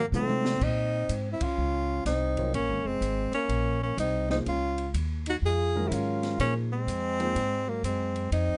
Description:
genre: modal jazz.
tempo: 124 BPM.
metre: 4/4.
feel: swing 66% on 8ths.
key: Bb minor.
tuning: A4 = 439 Hz.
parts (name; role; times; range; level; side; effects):
breathy tenor saxophone; melody; 0.0-8.6 s; Bb3 to Ab4; -32 LUFS; equal; none.
breathy trombone; second line; 0.0-8.6 s; Gb3 to F4; -37 LUFS; equal; none.
upright bass; bass; 0.0-8.6 s; F1 to C3; -33 LUFS; equal; none.
warm concert grand piano; accompaniment; 0.1-7.3 s; Eb3 to Db5; -37 LUFS; equal; none.
open jazz drum kit; drums; 0.1-8.5 s; crash cymbal, hi-hat, kick drum, ride cymbal, snare drum, toms; -40 LUFS; equal; none.
room: light reverb.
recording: nothing above 10.5 kHz.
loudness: -28 LUFS.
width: mono.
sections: 0.6-8.6 A section.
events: drum fill 0.0-0.6; band accent 1.3.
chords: 0.0 F7b9; 0.6 Bbm11.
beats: 0.13 | 0.61 1.09 1.57 2.06 | 2.54 3.02 3.50 3.98 | 4.46 4.95 5.43 5.91 | 6.39 6.87 7.36 7.84 | 8.32.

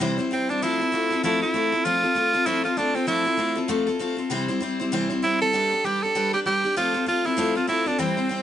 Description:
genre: rock.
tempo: 195 BPM.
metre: 4/4.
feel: swing 59% on 8ths.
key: unclear.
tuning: A4 = 441 Hz.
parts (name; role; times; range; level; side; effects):
picked steel-string acoustic guitar; accompaniment; 0.0-8.4 s; C3 to C5; -24 LUFS; left 2 dB; none.
edgy tenor saxophone; melody; 0.3-8.4 s; C4 to A4; -22 LUFS; right 2 dB; none.
room: light reverb.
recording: nothing above 10.5 kHz.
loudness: -21 LUFS.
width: side -10 dB against mid.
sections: 0.0-8.4 A section.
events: none.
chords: 0.0 C; 0.6 F; 4.3 C; 5.5 G; 6.8 F.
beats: 0.01 0.32 | 0.62 0.93 1.24 1.54 | 1.85 2.16 2.46 2.77 | 3.08 3.39 3.69 4.00 | 4.31 4.62 4.92 5.23 | 5.54 5.84 6.15 6.46 | 6.76 7.07 7.38 7.69 | 7.99 8.30.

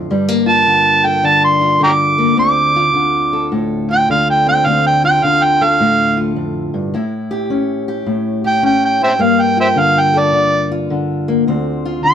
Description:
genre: acoustic country blues, solo or duo.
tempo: 106 BPM.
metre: 4/4.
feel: swing 65% on 8ths.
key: D minor.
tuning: A4 = 439 Hz.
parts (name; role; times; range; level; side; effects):
fingerpicked steel-string acoustic guitar; accompaniment; 0.0-12.1 s; D2 to A4; -16 LUFS; left 2 dB; none.
overdriven harmonica; melody; 0.5-12.1 s; C5 to D6; -12 LUFS; right 2 dB; none.
room: moderate studio reverb, RT60 0.6 s.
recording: none.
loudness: -12 LUFS.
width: side -9 dB against mid.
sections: 0.0-12.1 A section.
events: harmonica solo 0.0-12.1.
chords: 0.1 Gm9; 2.4 Dm7; 6.9 A7; 9.2 Gm9; 11.5 Dm7.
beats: | 0.09 0.66 1.24 1.81 | 2.38 2.95 3.52 4.09 | 4.66 5.23 5.80 6.37 | 6.93 7.50 8.07 8.64 | 9.21 9.78 10.34 10.91 | 11.48 12.04.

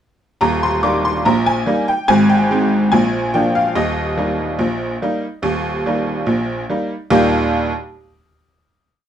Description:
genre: ragtime piano.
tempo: 72 BPM.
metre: 2/4.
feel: straight.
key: Eb major.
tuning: A4 = 440 Hz.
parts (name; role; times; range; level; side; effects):
tack piano; solo; 0.4-7.7 s; Eb1 to D6; -15 LUFS; equal; none.
room: moderate studio reverb, RT60 0.5 s.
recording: dark, warm production.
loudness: -15 LUFS.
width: side -9 dB against mid.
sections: 0.4-7.1 A section; 7.1-8.8 final chord.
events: none.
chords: 0.4 Eb; 2.1 Ab; 2.9 Bb7; 3.7 Eb.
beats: | 0.41 1.24 | 2.08 2.91 | 3.74 4.58 | 5.42 6.26 | 7.10.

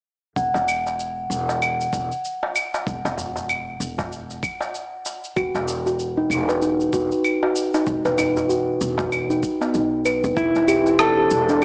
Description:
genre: organic downtempo.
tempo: 96 BPM.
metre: 4/4.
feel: swing 59% on 16ths.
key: unclear.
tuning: A4 = 440 Hz.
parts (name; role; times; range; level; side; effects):
upright bass; bass; 0.4-11.6 s; E1 to B1; -32 LUFS; equal; tube saturation, sidechain pumping.
electronic cabasa, claves and rim click; drums; 0.4-11.6 s; none; -29 LUFS; equal; none.
electronic kick drum; drums; 0.4-10.5 s; none; -34 LUFS; equal; none.
quartz singing bowl; texture; 0.4-11.6 s; F#5; -30 LUFS; equal; none.
darbuka; percussion; 0.5-11.6 s; none; -33 LUFS; equal; none.
steel tongue drum; arpeggios; 5.4-11.6 s; B3 to B4; -23 LUFS; equal; analog delay.
clean lap steel guitar; melody; 10.4-11.6 s; E4 to A4; -21 LUFS; equal; none.
warm analog pad; sustained chords; 10.4-11.6 s; E3 to D4; -31 LUFS; equal; chorus, tremolo, sidechain pumping.
room: moderate lush hall reverb, RT60 2.2 s.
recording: dry, gritty hardware recording, transformer saturation, cassette tape, small speaker sound.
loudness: -22 LUFS.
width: mono.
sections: 0.4-11.6 A section.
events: none.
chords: 0.4 Esus2; 5.4 B/E; 10.4 C/E.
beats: | 0.37 0.99 1.62 2.24 | 2.87 3.49 4.12 4.74 | 5.37 5.99 6.62 7.24 | 7.87 8.49 9.12 9.74 | 10.37 10.99 11.62.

